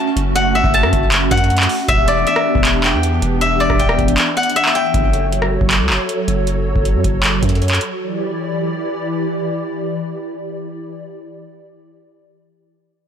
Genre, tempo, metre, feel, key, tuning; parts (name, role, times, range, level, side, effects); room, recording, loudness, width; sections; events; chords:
hip hop, trap; 157 BPM; 4/4; half-time; F# phrygian; A4 = 440 Hz
steel-string zither; melody; 0.0-6.3 s; D5 to A5; -17 LUFS; left 2 dB; digital delay
hollow soft pad; sustained chords; 0.0-11.0 s; E3 to D5; -21 LUFS; right 1 dB; ensemble chorus
long sustained 808-style bass; bass; 0.2-7.8 s; E1 to F#2; -19 LUFS; equal
booming analog drum machine; drums; 0.2-7.9 s; handclaps, hi-hat, kick drum, rim click; -18 LUFS; equal
light reverb, digital ambience; blown-out, overdriven recording, overdrive; -14 LUFS; side -8 dB against mid
0.0-4.9 A section; 4.9-11.1 B section; 11.1-13.1 C section
kick muted 4.2-4.9
0.0 F#m; 1.9 Em7; 4.9 F#m; 8.0 Em7; 11.1 N.C.